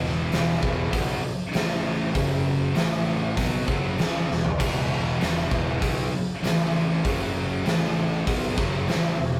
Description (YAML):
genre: stoner and doom metal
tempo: 98 BPM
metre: 4/4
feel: straight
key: unclear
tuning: A4 = 440 Hz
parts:
  - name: distorted electric guitar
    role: riff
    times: 0.0-9.4 s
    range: E2 to B3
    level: -33 LUFS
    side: equal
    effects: overdrive
  - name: thick fuzz guitar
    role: riff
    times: 0.0-9.4 s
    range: E2 to B3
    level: -33 LUFS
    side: equal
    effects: none
  - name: thick fuzz guitar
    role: riff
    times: 0.0-9.4 s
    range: E2 to B3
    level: -34 LUFS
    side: equal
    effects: none
  - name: fuzz fingered electric bass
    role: bass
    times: 0.0-9.4 s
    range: E1 to B1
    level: -33 LUFS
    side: equal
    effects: overdrive
  - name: big rock drum kit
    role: drums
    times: 0.0-9.0 s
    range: crash cymbal, hi-hat, kick drum, snare drum, toms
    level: -28 LUFS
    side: equal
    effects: none
room: light reverb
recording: rough rehearsal-room recording, warm saturation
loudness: -25 LUFS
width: mono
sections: 0.0-9.4 A section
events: drum fill 4.3-4.6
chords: 0.0 E5; 1.5 A5; 2.2 F#5; 2.8 A5; 3.4 E5; 6.4 A5; 7.0 F#5; 7.7 A5; 8.3 E5